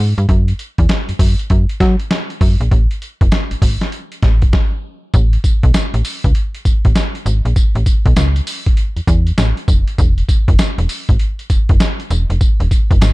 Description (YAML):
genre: R&B, new jack swing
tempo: 99 BPM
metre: 4/4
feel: swing 64% on 16ths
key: unclear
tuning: A4 = 440 Hz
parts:
  - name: slap-like FM bass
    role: bass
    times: 0.0-13.1 s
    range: E1 to F#3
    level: -14 LUFS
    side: equal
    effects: none
  - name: boom bap sampler-style drum kit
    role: drums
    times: 0.2-13.1 s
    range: hi-hat, kick drum, snare drum, tambourine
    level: -14 LUFS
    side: equal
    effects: none
room: little or no reverb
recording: dark, warm production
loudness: -12 LUFS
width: side -21 dB against mid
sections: 0.0-5.1 A section; 5.1-13.1 B section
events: stop 4.5-5.1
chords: none